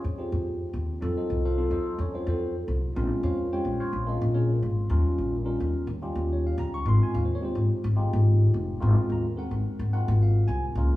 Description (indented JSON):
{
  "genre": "electric jazz fusion",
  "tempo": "215 BPM (eighths)",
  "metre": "7/8",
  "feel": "straight",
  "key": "unclear",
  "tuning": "A4 = 440 Hz",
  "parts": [
    { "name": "tine electric piano", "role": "accompaniment", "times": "0.0-11.0 s", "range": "Gb3 to Db6", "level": "-29 LUFS", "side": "equal", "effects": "phaser" },
    { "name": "upright bass", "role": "bass", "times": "0.0-10.9 s", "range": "F1 to F2", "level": "-25 LUFS", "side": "left 1 dB", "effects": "none" }
  ],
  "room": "wet large studio reverb, RT60 1.2 s",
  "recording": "band playing live in one room, studio reverb",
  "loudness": "-24 LUFS",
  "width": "side -16 dB against mid",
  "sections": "0.0-11.0 A section",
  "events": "none",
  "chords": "0.0 Fm9; 1.0 F7b9; 3.0 Bbm9; 4.9 Eb9; 6.9 Ab69; 8.8 Ab13",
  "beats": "0.18 0.46 0.73 | 1.01 1.29 1.57 1.85 2.13 2.40 2.68 | 2.96 3.24 3.52 3.80 4.08 4.36 4.63 | 4.91 5.19 5.47 5.75 6.03 6.30 6.58 | 6.86 7.14 7.42 7.70 7.98 8.25 8.53 | 8.81 9.09 9.37 9.65 9.93 10.20 10.48 | 10.76"
}